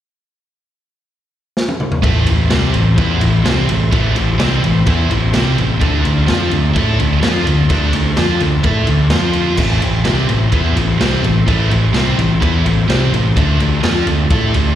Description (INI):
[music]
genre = hard rock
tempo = 127 BPM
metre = 4/4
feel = straight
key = A minor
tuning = A4 = 440 Hz
[part]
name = raw garage drum kit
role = drums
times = 1.6-14.7 s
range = crash cymbal, kick drum, ride cymbal, snare drum, toms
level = -18 LUFS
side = equal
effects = none
[part]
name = overdriven tonewheel organ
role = sustained chords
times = 2.0-14.8 s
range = D4 to C6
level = -28 LUFS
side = equal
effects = slow rotary speaker
[part]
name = scooped high-gain guitar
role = riff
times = 2.0-14.7 s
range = A2 to A4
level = -19 LUFS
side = right 9 dB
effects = distortion, slapback echo
[part]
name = sludgy distorted guitar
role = riff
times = 2.0-14.7 s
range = A2 to A4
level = -19 LUFS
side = left 8 dB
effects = overdrive
[part]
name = picked electric bass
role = bass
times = 2.0-14.8 s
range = A1 to A2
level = -16 LUFS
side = equal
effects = none
[sound]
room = small room ambience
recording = live gig heard through the venue's PA, recital hall reverb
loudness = -12 LUFS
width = side -11 dB against mid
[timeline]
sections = 0.1-2.0 A section; 2.0-14.8 B section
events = drum fill 1.6-2.0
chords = 0.1 N.C.; 2.0 Am; 5.8 D5; 9.1 F5; 9.6 Am; 13.4 D5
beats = | 0.15 0.62 1.09 1.57 | 2.04 2.51 2.98 3.46 | 3.93 4.40 4.87 5.34 | 5.82 6.29 6.76 7.23 | 7.70 8.18 8.65 9.12 | 9.59 10.06 10.53 11.00 | 11.48 11.95 12.42 12.89 | 13.36 13.83 14.30